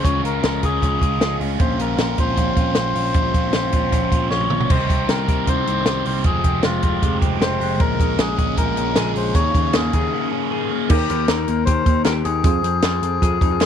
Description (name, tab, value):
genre	jangly indie pop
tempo	155 BPM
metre	4/4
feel	straight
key	unclear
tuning	A4 = 443 Hz
part	melodica	melody	0.0-13.7 s	F4 to Db5	-24 LUFS	left 5 dB	tape echo
part	biting overdriven guitar	accompaniment	0.0-10.9 s	F2 to Ab4	-25 LUFS	right 15 dB	phaser
part	electric guitar through a small old amp	arpeggios	0.0-13.7 s	Bb2 to C5	-26 LUFS	left 13 dB	none
part	picked electric bass	bass	0.0-13.7 s	F1 to F2	-24 LUFS	right 1 dB	none
part	compact cocktail drum kit	drums	0.0-13.7 s	crash cymbal, hi-hat, kick drum, snare drum, toms	-20 LUFS	equal	none
part	group handclap	percussion	8.2-13.7 s	none	-32 LUFS	right 17 dB	none
part	warm analog keys	accompaniment	10.9-13.7 s	Bb3 to C5	-28 LUFS	right 14 dB	chorus
room	light reverb, small room reverb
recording	1960s-style stereo with parts hard left and right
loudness	-17 LUFS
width	side -8 dB against mid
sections	0.0-4.7 A section; 4.7-10.9 B section; 10.9-13.7 C section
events	drum fill 4.3-4.7; break 10.1-10.9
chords	0.0 Db; 1.6 Bbmadd9; 4.7 Cm; 6.3 Fmadd9; 7.8 Bbm7; 9.4 Eb7sus4; 10.9 Eb; 12.4 Fm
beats	| 0.05 0.44 0.82 1.21 | 1.60 1.99 2.38 2.77 | 3.15 3.54 3.93 4.32 | 4.70 5.09 5.48 5.87 | 6.25 6.64 7.03 7.42 | 7.80 8.19 8.58 8.97 | 9.35 9.74 10.13 10.52 | 10.90 11.29 11.68 12.06 | 12.45 12.84 13.22 13.61